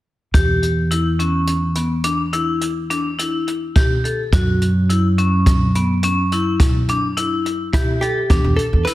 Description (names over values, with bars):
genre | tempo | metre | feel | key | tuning
progressive instrumental, band music in an uneven meter | 106 BPM | 7/4 | straight | unclear | A4 = 438 Hz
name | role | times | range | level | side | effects
vibraphone with hard mallets | arpeggios | 0.3-8.9 s | B3 to A4 | -21 LUFS | left 2 dB | digital delay
upright bass | bass | 0.3-8.8 s | E2 to F#2 | -19 LUFS | right 1 dB | none
jazz brush drum kit | drums | 0.3-8.9 s | hi-hat, kick drum | -18 LUFS | equal | none
hollow-body jazz guitar | melody | 7.7-8.9 s | E4 to B4 | -21 LUFS | right 1 dB | digital delay
room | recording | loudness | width
light reverb, studio reverb | dense, heavily limited modern master | -16 LUFS | side -16 dB against mid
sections
0.3-8.3 A section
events
none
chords
0.3 N.C.; 4.3 F#7(no3); 8.3 Em7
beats
| 0.34 0.91 1.48 2.05 2.62 3.19 3.76 | 4.33 4.89 5.46 6.03 6.60 7.17 7.74 | 8.30 8.87